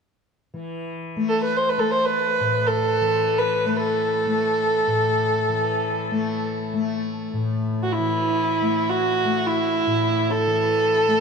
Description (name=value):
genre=world meditative, free-time meditation music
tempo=free time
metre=none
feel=none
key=unclear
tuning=A4 = 441 Hz
part: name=tanpura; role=drone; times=0.5-11.2 s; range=A2 to A3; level=-26 LUFS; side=left 4 dB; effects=none
part: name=dark fiddle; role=melody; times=1.3-11.2 s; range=E4 to C5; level=-20 LUFS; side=right 1 dB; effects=shimmer reverb
room=wet cathedral reverb, RT60 4.8 s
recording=dark, warm production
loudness=-19 LUFS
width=side -5 dB against mid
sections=0.6-11.2 A section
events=none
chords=none